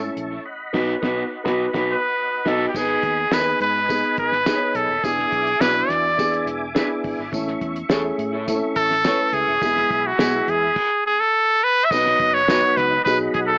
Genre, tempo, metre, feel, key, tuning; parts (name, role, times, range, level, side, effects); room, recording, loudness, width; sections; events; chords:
uptempo 1960s-style soul; 105 BPM; 4/4; straight; B mixolydian; A4 = 440 Hz
brilliant trumpet; melody; 0.0-13.6 s; F#4 to E5; -18 LUFS; equal
dark upright piano; accompaniment; 0.0-13.5 s; F#3 to B5; -24 LUFS; equal
tonewheel organ; sustained chords; 0.0-13.6 s; D#5 to D6; -32 LUFS; equal; overdrive, chorus vibrato, slow rotary speaker
vintage muted fingered electric bass; bass; 0.0-13.6 s; D#1 to A2; -35 LUFS; equal
cloth-damped thuddy drum kit; drums; 0.2-13.5 s; crash cymbal, hi-hat, kick drum, snare drum; -26 LUFS; equal
electric guitar through a small old amp; stabs; 0.7-12.6 s; B3 to C#5; -27 LUFS; right 1 dB; tape echo
tambourine; percussion; 2.8-13.2 s; -35 LUFS; equal
moderate studio reverb, RT60 0.5 s; AM radio sound; -17 LUFS; side -30 dB against mid
0.0-2.7 A section; 2.7-11.9 B section; 11.9-13.6 C section
band accent 0.5-2.7
0.5 B; 2.7 G#m; 5.0 E7; 7.3 A; 9.6 E; 11.9 B